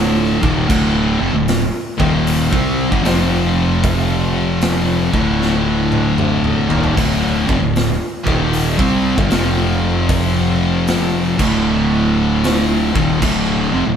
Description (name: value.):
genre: stoner and doom metal.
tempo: 77 BPM.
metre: 4/4.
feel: swing 66% on 8ths.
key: D minor.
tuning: A4 = 440 Hz.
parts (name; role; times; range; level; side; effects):
high-gain distorted guitar; riff; 0.0-14.0 s; D2 to C4; -22 LUFS; equal; distortion.
thick fuzz guitar; riff; 0.0-14.0 s; D2 to C4; -19 LUFS; left 6 dB; distortion.
thick fuzz guitar; riff; 0.0-14.0 s; D2 to C4; -20 LUFS; right 5 dB; distortion.
fuzz fingered electric bass; bass; 0.0-14.0 s; D1 to C2; -22 LUFS; right 1 dB; overdrive.
big rock drum kit; drums; 0.4-13.5 s; crash cymbal, hi-hat, kick drum, snare drum, toms; -20 LUFS; equal; none.
room: light reverb.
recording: band playing live in one room.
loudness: -13 LUFS.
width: side -8 dB against mid.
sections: 0.0-14.0 A section.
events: drum fill 5.4-7.0.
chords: 0.0 Dm; 3.0 F5; 5.0 Dm; 9.3 F5; 11.3 Dm.